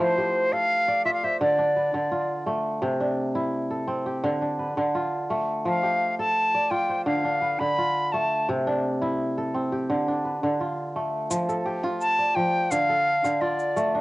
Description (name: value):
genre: west african traditional, West African string and xylophone music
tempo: 85 BPM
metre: 4/4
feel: straight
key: F lydian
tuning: A4 = 440 Hz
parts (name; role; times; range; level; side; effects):
- silver concert flute; melody; 0.0-13.9 s; C5 to B5; -23 LUFS; left 1 dB; cassette tape
- kora; arpeggios; 0.0-14.0 s; C3 to D5; -25 LUFS; equal; cassette tape
- tube shaker; percussion; 11.3-13.9 s; none; -36 LUFS; left 3 dB; none
room: wet small room ambience, RT60 0.5 s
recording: home recording on cassette, nothing above 10.8 kHz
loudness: -22 LUFS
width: side -19 dB against mid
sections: 0.0-11.3 A section; 11.3-14.0 B section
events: none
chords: 0.0 F; 1.4 Dm; 2.8 C; 4.2 Dm; 5.7 F; 7.1 Dm; 8.5 C; 9.9 Dm; 11.3 F; 12.7 Dm